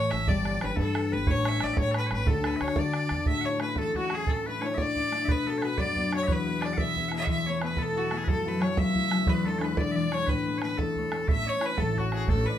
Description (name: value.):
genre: celtic folk, Celtic jig.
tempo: 120 BPM (dotted quarters).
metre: 6/8.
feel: straight.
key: A major from 3.3 s.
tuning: A4 = 441 Hz.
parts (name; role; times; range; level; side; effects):
bright fiddle; melody; 0.0-12.6 s; F#4 to E5; -30 LUFS; equal; none.
loud bright bagpipes; second line; 0.0-12.6 s; F#4 to F#5; -36 LUFS; left 4 dB; none.
concert harp; accompaniment; 0.0-12.6 s; C#2 to D5; -30 LUFS; left 3 dB; none.
upright bass; bass; 0.0-3.3, 11.3-12.4 s; G1 to D3; -30 LUFS; equal; none.
bodhran; percussion; 0.1-12.4 s; none; -29 LUFS; right 2 dB; none.
room: light reverb.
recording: none.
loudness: -25 LUFS.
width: side -10 dB against mid.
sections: 0.0-3.3 A section; 3.3-11.3 B section; 11.3-12.6 B section.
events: none.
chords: 0.3 G; 1.3 A7; 2.3 D; 3.3 A; 4.3 Dsus2/A; 5.3 Bm; 6.3 E; 8.3 F#m7; 9.3 E7; 10.3 Aadd9; 11.3 A.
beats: | 0.27 0.77 | 1.27 1.77 | 2.27 2.77 | 3.27 3.77 | 4.27 4.77 | 5.27 5.77 | 6.27 6.77 | 7.27 7.77 | 8.28 8.78 | 9.28 9.78 | 10.28 10.78 | 11.28 11.78 | 12.28.